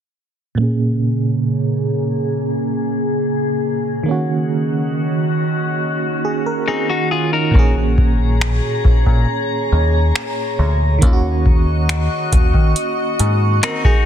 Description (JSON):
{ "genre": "contemporary R&B", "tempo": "69 BPM", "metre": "4/4", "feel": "straight", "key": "Bb minor", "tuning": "A4 = 439 Hz", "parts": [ { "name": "FM electric piano with tremolo", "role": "accompaniment", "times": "0.5-14.1 s", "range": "Bb2 to Bb4", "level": "-21 LUFS", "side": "right 3 dB", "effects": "low-pass filter" }, { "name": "glassy FM pad", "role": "sustained chords", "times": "1.0-14.1 s", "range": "Db3 to Db6", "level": "-20 LUFS", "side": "equal", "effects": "ensemble chorus, built-in reverb, low-pass filter" }, { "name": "clean electric guitar", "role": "arpeggios", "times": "6.7-7.7, 13.6-14.1 s", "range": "C4 to Bb4", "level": "-21 LUFS", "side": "left 6 dB", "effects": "lush chorus, low-pass filter, ping-pong delay" }, { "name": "deep dub picked electric bass", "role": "bass", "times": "7.5-13.6 s", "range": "Bb1 to Eb3", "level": "-16 LUFS", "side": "equal", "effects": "none" }, { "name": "booming analog drum machine", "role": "drums", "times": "7.5-14.0 s", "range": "finger snaps, hi-hat, kick drum", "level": "-15 LUFS", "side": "equal", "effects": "vintage 12-bit sampler grit, soft clipping on snare" } ], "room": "digital ambience", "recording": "dense, heavily limited modern master", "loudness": "-15 LUFS", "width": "side -9 dB against mid", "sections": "0.6-7.5 A section; 7.5-14.1 B section", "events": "filter sweep 0.6-7.5", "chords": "0.6 Bbm7; 4.1 Ebm7; 7.5 Bbm7; 11.0 Ebm7" }